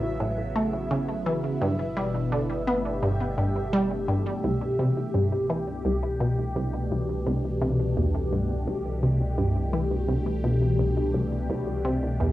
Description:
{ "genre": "ambient, sequencer-driven space music", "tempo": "85 BPM", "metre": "4/4", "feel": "straight", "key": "C major from 4.4 s", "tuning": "A4 = 440 Hz", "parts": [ { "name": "phased analog pad", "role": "sustained chords", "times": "0.0-12.3 s", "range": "B2 to G#4", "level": "-28 LUFS", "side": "left 1 dB", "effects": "phaser, chorus, cassette tape" }, { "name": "warm sub bass", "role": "bass", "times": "0.0-12.3 s", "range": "G1 to C2", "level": "-32 LUFS", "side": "equal", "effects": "none" }, { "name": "bubbling stepped-filter texture", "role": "texture", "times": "0.0-4.5 s", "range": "E5", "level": "-39 LUFS", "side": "right 3 dB", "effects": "chorus, built-in reverb, cassette tape" }, { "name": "resonant blip pluck", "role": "riff", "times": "0.2-12.3 s", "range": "C2 to B3", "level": "-27 LUFS", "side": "equal", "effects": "chorus, cassette tape, tape echo" } ], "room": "wet small room reverb, RT60 0.6 s", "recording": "home recording on cassette", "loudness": "-24 LUFS", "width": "side -15 dB against mid", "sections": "0.0-4.4 A section; 4.4-12.3 B section", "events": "none", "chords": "0.0 Aadd9; 1.6 G; 4.4 Cadd9", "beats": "0.20 0.91 | 1.61 2.32 3.03 3.73 | 4.44 5.14 5.85 6.56 | 7.26 7.97 8.67 9.38 | 10.09 10.79 11.50 12.20" }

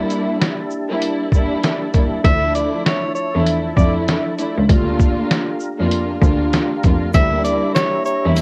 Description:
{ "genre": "hip hop, boom-bap hip-hop", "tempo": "98 BPM", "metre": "4/4", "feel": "swing 61% on 16ths", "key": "unclear", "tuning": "A4 = 440 Hz", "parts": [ { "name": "dark studio string section", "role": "accompaniment", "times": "0.0-8.4 s", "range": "F3 to F4", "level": "-24 LUFS", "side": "equal", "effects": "cassette tape, high-pass filter, low-pass filter" }, { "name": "percussive tonewheel organ", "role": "sustained chords", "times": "0.0-8.4 s", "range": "F3 to Bb5", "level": "-28 LUFS", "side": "equal", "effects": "chorus vibrato, slow rotary speaker, high-pass filter, low-pass filter, cassette tape" }, { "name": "trip hop sampler-style drum kit", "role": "drums", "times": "0.1-8.4 s", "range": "hi-hat, kick drum, shaker, snare drum", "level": "-20 LUFS", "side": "equal", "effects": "cassette tape" }, { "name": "breathy tenor saxophone", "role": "melody", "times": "2.2-8.3 s", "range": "C#5 to E5", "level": "-23 LUFS", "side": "equal", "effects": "high-pass filter, low-pass filter, cassette tape" }, { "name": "rich cello", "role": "bass", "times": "2.2-8.3 s", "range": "C#2 to F2", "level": "-22 LUFS", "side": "equal", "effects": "none" }, { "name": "egg shaker", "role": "percussion", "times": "7.1-8.4 s", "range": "none", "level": "-43 LUFS", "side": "equal", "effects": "none" } ], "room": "light reverb", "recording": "home recording on cassette", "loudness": "-18 LUFS", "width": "mono", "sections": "0.0-8.4 A section", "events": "break 0.0-2.2", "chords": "0.0 Em7b5; 2.2 Dmadd9; 4.7 Gm7/D; 7.1 Em7b5", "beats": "0.41 1.02 1.63 | 2.24 2.86 3.47 4.08 | 4.69 5.31 5.92 6.53 | 7.14 7.75 8.37" }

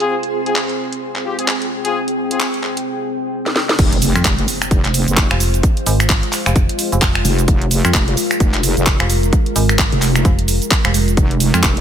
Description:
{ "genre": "bass house", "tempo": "130 BPM", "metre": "4/4", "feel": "swing 59% on 16ths", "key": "F minor", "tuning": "A4 = 440 Hz", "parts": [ { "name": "deep dark ambient pad", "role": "sustained chords", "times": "0.0-11.8 s", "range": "Ab3 to G5", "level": "-22 LUFS", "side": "equal", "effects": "chorus, built-in reverb, sidechain pumping" }, { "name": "mellow horn section", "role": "stabs", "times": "0.0-2.5 s", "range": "C4 to Ab4", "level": "-22 LUFS", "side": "left 4 dB", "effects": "sidechain pumping, tape echo" }, { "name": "house drum kit", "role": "drums", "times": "0.0-11.8 s", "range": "crash cymbal, finger snaps, handclaps, hi-hat, shaker, snare drum", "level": "-18 LUFS", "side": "equal", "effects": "low-pass filter on snare, low-pass filter on hats, low-pass filter on perc, low-pass filter on cymbals, low-pass filter on room" }, { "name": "granular cloud pad", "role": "texture", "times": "0.0-2.9 s", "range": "F4 to C5", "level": "-27 LUFS", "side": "right 3 dB", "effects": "built-in reverb, sidechain pumping" }, { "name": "wobble bass", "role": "bass", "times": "3.8-11.8 s", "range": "F1", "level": "-17 LUFS", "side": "equal", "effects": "chorus, sidechain pumping" }, { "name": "electronic kick drum", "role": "drums", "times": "3.8-11.7 s", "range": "none", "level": "-16 LUFS", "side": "equal", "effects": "none" }, { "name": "impact", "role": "sound effects", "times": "3.8-5.6 s", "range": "none", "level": "-25 LUFS", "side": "equal", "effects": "none" }, { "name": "metallic FM bass", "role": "bass", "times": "4.2-11.6 s", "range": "F1 to F2", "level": "-16 LUFS", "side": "equal", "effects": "overdrive, sidechain pumping" } ], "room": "light reverb, digital ambience", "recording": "none", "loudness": "-14 LUFS", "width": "side -9 dB against mid", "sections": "0.0-3.8 A section; 3.8-11.8 B section", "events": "filter sweep on drum 0.0-3.8; filter sweep on ambient pad 0.0-3.8; drum fill 3.4-3.8; drop 3.8-11.8; impact 3.8-5.6", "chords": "0.0 Fm", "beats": "| 0.10 0.56 1.02 1.48 | 1.94 2.40 2.87 3.33 | 3.79 4.25 4.71 5.17 | 5.63 6.10 6.56 7.02 | 7.48 7.94 8.40 8.87 | 9.33 9.79 10.25 10.71 | 11.17 11.63" }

